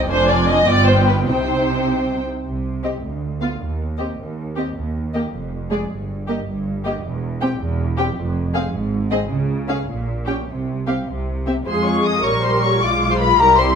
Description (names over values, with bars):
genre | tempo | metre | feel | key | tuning
quick classical-period movement for string orchestra | 104 BPM (dotted quarters) | 6/8 | straight | F minor from 7.0 s | A4 = 441 Hz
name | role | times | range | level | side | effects
muted studio violin section | melody | 0.0-13.8 s | D5 to Eb6 | -20 LUFS | left 5 dB | none
muted studio viola section | accompaniment | 0.0-13.8 s | G3 to G4 | -23 LUFS | right 1 dB | none
muted studio cello section | bass | 0.0-13.8 s | D2 to Bb4 | -24 LUFS | right 2 dB | none
muted studio double bass section | bass | 0.0-13.8 s | E1 to F2 | -25 LUFS | right 3 dB | none
muted studio violin section | second line | 0.1-13.7 s | F4 to Eb5 | -23 LUFS | left 1 dB | none
room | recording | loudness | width
light reverb | close, detailed microphones | -17 LUFS | side -7 dB against mid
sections
0.0-2.4 A section; 2.4-11.7 B section; 11.7-13.8 A section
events
none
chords
0.1 Ddim/F; 0.7 G7; 1.3 Cm; 2.4 N.C.; 3.0 Bdim/D; 3.6 Cm/Eb; 4.8 Eb5; 5.3 Ddim/F (rootless); 5.9 Eb/G (rootless); 7.0 C/E; 8.2 F5; 8.7 Ab; 9.3 N.C.; 9.9 Gdim/Bb; 10.5 N.C.; 11.7 Fm; 12.2 Bbm69; 12.8 Bdim7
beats
| 0.10 0.68 | 1.26 1.85 | 2.45 3.03 | 3.61 4.18 | 4.75 5.33 | 5.90 6.47 | 7.04 7.60 | 8.17 8.73 | 9.30 9.88 | 10.47 11.07 | 11.66 12.24 | 12.82 13.39